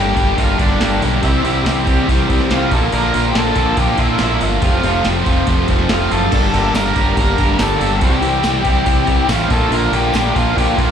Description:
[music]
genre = classic rock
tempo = 142 BPM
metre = 4/4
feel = straight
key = G dorian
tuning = A4 = 440 Hz
[part]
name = octave-fuzz lead guitar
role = melody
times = 0.0-10.9 s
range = D4 to Bb4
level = -20 LUFS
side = equal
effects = distortion, slapback echo, digital delay
[part]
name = mellow tonewheel organ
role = sustained chords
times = 0.0-10.9 s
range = F3 to Bb4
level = -30 LUFS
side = equal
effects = none
[part]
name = cranked stack guitar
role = riff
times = 0.0-10.9 s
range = F2 to C4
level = -23 LUFS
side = left 1 dB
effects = overdrive, slapback echo
[part]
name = crunchy overdriven guitar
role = riff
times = 0.0-10.9 s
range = F2 to G4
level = -21 LUFS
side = left 10 dB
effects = slapback echo
[part]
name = distorted electric guitar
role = riff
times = 0.0-10.9 s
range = F2 to G4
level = -21 LUFS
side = right 11 dB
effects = overdrive, slapback echo
[part]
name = growling fingered electric bass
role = bass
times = 0.0-10.9 s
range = F1 to C2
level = -20 LUFS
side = equal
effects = overdrive
[part]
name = soft vintage rhythm box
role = drums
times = 0.1-10.9 s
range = crash cymbal, hi-hat, kick drum, snare drum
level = -19 LUFS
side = equal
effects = none
[part]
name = tambourine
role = percussion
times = 6.7-10.2 s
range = none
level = -37 LUFS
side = equal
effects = none
[sound]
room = little or no reverb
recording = live gig heard through the venue's PA, club reverb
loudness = -13 LUFS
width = side -8 dB against mid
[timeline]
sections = 0.0-10.9 A section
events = none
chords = 0.0 Gm; 1.2 C; 2.7 Bb; 4.6 F; 6.3 Gm; 8.0 C; 9.5 Bb

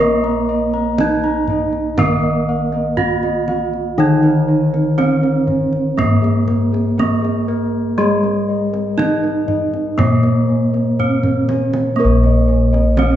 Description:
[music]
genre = Javanese gamelan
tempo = 60 BPM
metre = 4/4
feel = straight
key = Bb slendro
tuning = A4 = 444 Hz
[part]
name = gamelan-type bronze metallophone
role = melody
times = 0.0-13.2 s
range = Ab3-45c to Bb4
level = -19 LUFS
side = right 3 dB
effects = none
[part]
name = gamelan-type bronze metallophone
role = accompaniment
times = 0.0-12.0 s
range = Eb3-35c to Bb3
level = -21 LUFS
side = left 2 dB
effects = none
[part]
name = gamelan-type bossed gongs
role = arpeggios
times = 0.0-13.2 s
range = Ab4-45c to Bb5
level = -22 LUFS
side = left 1 dB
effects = none
[part]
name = gamelan-type bossed gongs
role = bass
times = 0.0-13.2 s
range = Bb1 to Bb4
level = -19 LUFS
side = left 1 dB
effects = none
[part]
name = kendang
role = percussion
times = 0.2-13.2 s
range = none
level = -24 LUFS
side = right 2 dB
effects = none
[sound]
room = wet recital hall reverb, RT60 1.5 s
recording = heard from further back in the room, nothing above 7.8 kHz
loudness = -14 LUFS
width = side -11 dB against mid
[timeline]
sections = 0.0-12.0 A section; 12.0-13.2 A section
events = drum fill 11.0-12.0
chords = none

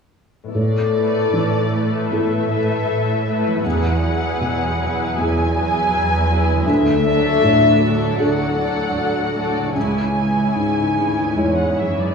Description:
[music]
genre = cinematic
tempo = 78 BPM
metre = 4/4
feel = uneven beats, rubato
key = A major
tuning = A4 = 440 Hz
[part]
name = concert harp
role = arpeggios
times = 0.4-12.1 s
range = A2 to C#5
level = -27 LUFS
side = left 5 dB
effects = none
[part]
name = muted studio violin section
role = melody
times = 0.5-12.1 s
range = D5 to G#5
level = -23 LUFS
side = left 2 dB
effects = none
[part]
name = felt-muted upright piano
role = accompaniment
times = 0.5-12.1 s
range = D2 to C#5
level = -22 LUFS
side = equal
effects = none
[part]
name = muted studio cello section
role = bass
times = 0.5-12.1 s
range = C#2 to A2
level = -22 LUFS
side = right 2 dB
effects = none
[part]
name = muted studio violin section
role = second line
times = 0.9-12.1 s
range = E4 to D5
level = -25 LUFS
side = left 3 dB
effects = none
[part]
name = muted studio viola section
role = accompaniment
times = 0.9-12.1 s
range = E3 to F#4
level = -26 LUFS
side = right 2 dB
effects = none
[sound]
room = wet recital hall reverb, RT60 1.4 s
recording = recorded in a church or concert hall, small room ambience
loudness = -16 LUFS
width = side -5 dB against mid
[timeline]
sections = 0.5-12.1 A section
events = none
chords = 0.5 Asus2; 3.6 Eadd9; 6.7 D; 9.8 C#m

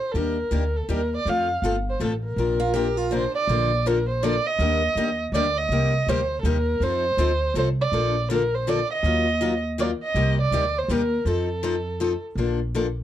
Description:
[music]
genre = acoustic string swing (jazz manouche)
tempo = 162 BPM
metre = 3/4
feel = swing 63% on 8ths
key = Bb major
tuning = A4 = 445 Hz
[part]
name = dark violin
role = melody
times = 0.0-12.2 s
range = A4 to F5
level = -24 LUFS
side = right 2 dB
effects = none
[part]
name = picked steel-string acoustic guitar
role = accompaniment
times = 0.1-12.9 s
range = C3 to Bb4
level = -27 LUFS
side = left 5 dB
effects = none
[part]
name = upright bass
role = bass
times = 0.1-13.0 s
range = G1 to F2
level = -25 LUFS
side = equal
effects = none
[part]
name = picked steel-string acoustic guitar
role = second line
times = 2.6-3.5 s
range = D4 to G4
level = -29 LUFS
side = right 5 dB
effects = none
[sound]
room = light reverb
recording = dark, warm production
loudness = -21 LUFS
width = side -11 dB against mid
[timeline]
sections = 0.0-3.5 A section; 3.5-12.4 B section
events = none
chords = 0.1 Ebmaj7; 1.3 F; 2.4 Bbadd9; 3.5 Bbmaj7; 4.6 Ebmaj7; 5.7 Cm7; 6.8 F7; 7.9 Bbmaj7; 9.0 Ebmadd9; 10.2 Cm7; 11.3 F7; 12.4 Bbmaj7

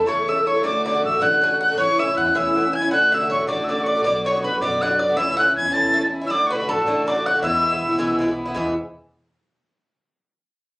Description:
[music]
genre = celtic folk, Celtic jig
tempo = 106 BPM (dotted quarters)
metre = 6/8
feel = straight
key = E mixolydian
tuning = A4 = 443 Hz
[part]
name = mellow mid whistle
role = melody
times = 0.0-8.2 s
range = A5 to A6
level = -20 LUFS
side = equal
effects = none
[part]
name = bluegrass banjo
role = second line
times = 0.0-8.2 s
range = A4 to A5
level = -29 LUFS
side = equal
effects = none
[part]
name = warm oboe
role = second line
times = 0.0-8.2 s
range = A4 to A5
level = -27 LUFS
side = left 1 dB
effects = none
[part]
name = Irish bouzouki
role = accompaniment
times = 0.0-8.7 s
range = G#2 to A4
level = -23 LUFS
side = equal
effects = none
[part]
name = upright bass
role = bass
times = 0.0-8.8 s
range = A1 to F#2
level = -35 LUFS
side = equal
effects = none
[sound]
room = moderate studio reverb, RT60 0.6 s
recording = recorded on a phone in the room, club reverb, compression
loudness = -17 LUFS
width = side -25 dB against mid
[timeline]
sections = 0.0-8.6 A section; 8.6-9.7 B section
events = none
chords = 0.0 A; 0.6 D; 1.8 A; 2.9 D; 4.0 Bm; 5.2 A/C#; 6.3 D; 7.4 E

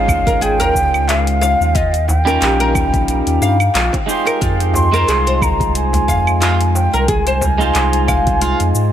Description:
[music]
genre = organic downtempo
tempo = 90 BPM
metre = 4/4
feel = swing 56% on 16ths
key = F minor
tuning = A4 = 443 Hz
[part]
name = breathy mellow bansuri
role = melody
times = 0.0-8.9 s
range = Eb5 to C6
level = -19 LUFS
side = right 1 dB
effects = tape echo
[part]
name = twangy electric guitar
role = accompaniment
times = 0.0-8.9 s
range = G3 to F5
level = -20 LUFS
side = right 2 dB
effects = vintage 12-bit sampler grit, sidechain pumping, tape echo
[part]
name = warm sub bass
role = bass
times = 0.0-8.9 s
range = Ab1 to Ab2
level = -17 LUFS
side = equal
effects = none
[part]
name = afro-pop drum kit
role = drums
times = 0.1-8.9 s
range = claves, handclaps, hi-hat, shaker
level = -22 LUFS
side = equal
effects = none
[part]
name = electronic kick drum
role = drums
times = 0.1-8.4 s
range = none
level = -20 LUFS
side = equal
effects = none
[part]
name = darbuka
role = percussion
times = 0.1-8.2 s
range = none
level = -25 LUFS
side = right 1 dB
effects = none
[part]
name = oud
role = arpeggios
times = 0.3-8.6 s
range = F4 to F5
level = -21 LUFS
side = left 2 dB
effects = tape echo
[sound]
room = light reverb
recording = none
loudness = -12 LUFS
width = side -10 dB against mid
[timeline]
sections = 0.0-8.9 A section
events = none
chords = 0.0 Dbmaj7; 1.8 Eb7; 4.4 Fm7

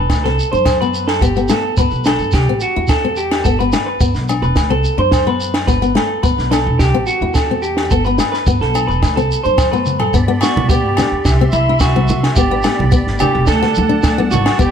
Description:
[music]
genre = highlife guitar band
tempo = 108 BPM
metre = 4/4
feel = straight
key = G major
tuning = A4 = 440 Hz
[part]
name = fingerpicked steel-string acoustic guitar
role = accompaniment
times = 0.0-14.7 s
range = A3 to E4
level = -20 LUFS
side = left 6 dB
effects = none
[part]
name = electric guitar through a small old amp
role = arpeggios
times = 0.0-14.7 s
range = E4 to C5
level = -18 LUFS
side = right 2 dB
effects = tape echo
[part]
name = upright bass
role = bass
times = 0.0-14.7 s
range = E1 to C3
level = -19 LUFS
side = equal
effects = none
[part]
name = compact cocktail drum kit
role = drums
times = 0.1-14.7 s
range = kick drum, snare drum, toms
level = -18 LUFS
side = right 1 dB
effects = none
[part]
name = agogo bells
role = percussion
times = 0.1-14.6 s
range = none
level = -24 LUFS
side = left 6 dB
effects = none
[part]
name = shekere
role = percussion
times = 0.1-14.7 s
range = none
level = -24 LUFS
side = right 3 dB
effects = none
[part]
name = musette accordion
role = sustained chords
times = 10.1-14.7 s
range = D5 to C6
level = -26 LUFS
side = right 2 dB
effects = none
[part]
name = congas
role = percussion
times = 10.6-14.5 s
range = none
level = -21 LUFS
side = right 2 dB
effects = none
[sound]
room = light reverb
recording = none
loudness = -12 LUFS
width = side -8 dB against mid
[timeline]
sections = 0.0-10.1 A section; 10.1-14.7 B section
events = drum fill 9.6-10.1; clean electric guitar solo 10.1-14.7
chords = 0.1 D; 1.2 G; 2.3 C; 3.5 G; 4.6 D; 5.7 G; 6.8 C; 7.9 G; 9.0 D; 10.1 G; 11.3 C; 12.4 G; 13.5 D

